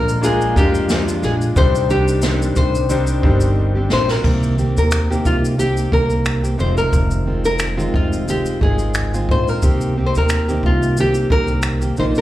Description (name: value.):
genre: acoustic pop.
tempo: 89 BPM.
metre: 4/4.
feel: swing 55% on 16ths.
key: C minor.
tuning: A4 = 438 Hz.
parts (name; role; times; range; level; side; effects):
nylon-string guitar; melody; 0.0-12.2 s; F4 to C5; -21 LUFS; left 1 dB; slapback echo, plate reverb.
clear concert grand piano; accompaniment; 0.0-4.3 s; G3 to C5; -26 LUFS; left 4 dB; plate reverb, slapback echo.
fingerpicked plugged-in steel-string acoustic guitar; accompaniment; 0.0-12.2 s; F2 to G4; -22 LUFS; right 1 dB; plate reverb, slapback echo.
upright bass; bass; 0.0-12.2 s; F1 to F2; -19 LUFS; equal; none.
jazz brush drum kit; drums; 0.1-12.2 s; crash cymbal, finger snaps, kick drum, shaker, snare drum; -20 LUFS; equal; none.
room: light reverb.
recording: live gig heard through the venue's PA, club reverb.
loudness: -15 LUFS.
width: side -14 dB against mid.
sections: 0.0-4.2 A section; 4.2-12.2 B section.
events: drum fill 3.6-4.2.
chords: 0.0 Bb7; 1.6 Cmadd9; 4.2 Cm7; 6.6 Fm7; 9.6 Cm7.